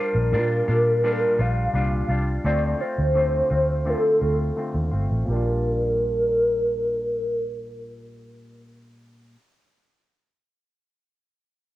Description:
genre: indie pop, bedroom pop.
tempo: 85 BPM.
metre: 4/4.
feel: straight.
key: Bb major.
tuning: A4 = 442 Hz.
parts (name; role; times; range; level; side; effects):
hollow clarinet-like synth lead; melody; 0.0-8.9 s; A4 to F5; -22 LUFS; equal; phaser, ensemble chorus, low-pass filter.
semi-hollow electric guitar; accompaniment; 0.0-9.4 s; Bb2 to F4; -30 LUFS; left 1 dB; lush chorus, warbly pitch drift, low-pass filter.
vintage muted fingered electric bass; bass; 0.1-9.3 s; G1 to Bb2; -24 LUFS; equal; none.
room: light reverb.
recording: home recording on cassette.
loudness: -20 LUFS.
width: side -15 dB against mid.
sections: 0.0-5.3 A section; 5.3-8.1 B section.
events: filter sweep 0.0-5.3.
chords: 0.0 Bb6; 2.4 Dm7; 5.3 Bb6.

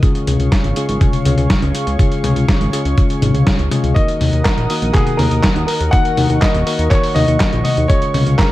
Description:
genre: italo disco.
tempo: 122 BPM.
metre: 4/4.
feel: straight.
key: Eb minor.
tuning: A4 = 440 Hz.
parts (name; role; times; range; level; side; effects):
warm analog pad; sustained chords; 0.0-8.5 s; Ab4 to Eb6; -25 LUFS; equal; chorus.
tine electric piano; stabs; 0.0-8.5 s; Db3 to Bb4; -21 LUFS; left 2 dB; none.
dusty soul sampler-style drum kit; drums; 0.0-8.5 s; handclaps, hi-hat, snare drum, toms; -18 LUFS; left 2 dB; overdrive.
electronic kick drum; drums; 0.0-8.5 s; none; -15 LUFS; equal; overdrive.
fat analog bass; bass; 0.3-8.4 s; Eb1 to Eb2; -18 LUFS; equal; tube saturation.
warm grand piano; melody; 3.9-8.5 s; Ab4 to Gb5; -20 LUFS; equal; tape echo.
room: light reverb.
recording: dark, warm production, vinyl crackle.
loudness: -12 LUFS.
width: side -16 dB against mid.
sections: 0.0-8.5 A section.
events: none.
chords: 0.0 Db; 4.0 Ebm; 7.9 Db.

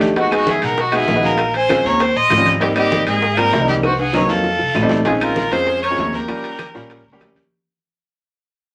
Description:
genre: Afro-Cuban jazz.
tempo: 196 BPM.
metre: 4/4.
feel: straight.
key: unclear.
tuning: A4 = 439 Hz.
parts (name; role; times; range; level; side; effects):
clear baby grand piano; accompaniment; 0.0-7.4 s; Gb3 to G#4; -22 LUFS; equal; none.
upright bass; bass; 0.0-7.5 s; Ab1 to Ab2; -28 LUFS; equal; none.
bongos; percussion; 0.0-7.5 s; none; -29 LUFS; equal; none.
congas; percussion; 0.0-7.5 s; none; -30 LUFS; equal; none.
guiro; percussion; 0.0-7.5 s; none; -34 LUFS; equal; none.
timbales; percussion; 0.0-7.5 s; none; -28 LUFS; equal; none.
rich fiddle; melody; 0.2-7.2 s; F#4 to Eb5; -20 LUFS; equal; none.
breathy jazz flute; second line; 0.2-7.2 s; F4 to C6; -28 LUFS; equal; none.
claves; percussion; 0.3-7.4 s; none; -34 LUFS; equal; none.
room: wet studio ambience, RT60 0.5 s.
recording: vinyl crackle.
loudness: -17 LUFS.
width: mono.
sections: 0.0-5.1 A section; 5.1-7.5 B section.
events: drum fill 3.8-5.1; fade-out 5.1-7.5.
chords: 0.2 Emaj9; 1.4 Bbm9; 2.0 Eb13; 2.6 Abmaj9; 3.8 Cm7b5; 4.4 F7; 5.1 Bbm11; 6.3 Eb9.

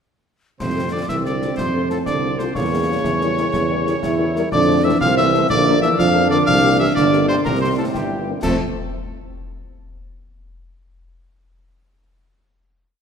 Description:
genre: military-style march for wind band.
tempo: 123 BPM (dotted quarters).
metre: 6/8.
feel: straight.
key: F major.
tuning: A4 = 440 Hz.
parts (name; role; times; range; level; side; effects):
clear cornet; melody; 0.6-8.6 s; G4 to F5; -24 LUFS; equal; none.
dark euphonium; second line; 0.6-8.6 s; G2 to A3; -23 LUFS; right 2 dB; none.
mellow piccolo; second line; 0.6-8.6 s; G5 to F6; -24 LUFS; left 2 dB; none.
dark trombone section; sustained chords; 0.6-8.6 s; C3 to E4; -24 LUFS; right 2 dB; none.
mellow tuba; bass; 0.6-8.6 s; G1 to F2; -22 LUFS; right 2 dB; none.
concert snare drum, clash cymbals and concert bass drum; drums; 0.6-8.6 s; none; -29 LUFS; left 1 dB; none.
mellow French horn section; accompaniment; 0.8-8.6 s; F3 to C5; -26 LUFS; left 6 dB; none.
room: wet scoring stage reverb, RT60 2.1 s.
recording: minimal, uncompressed stereo recording.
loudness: -16 LUFS.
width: side -7 dB against mid.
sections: 0.6-8.4 A section; 8.4-9.4 final chord.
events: none.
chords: 0.6 F; 2.6 Edim7; 4.5 F; 5.5 Bb; 6.5 C7sus4; 7.5 C7; 8.4 F.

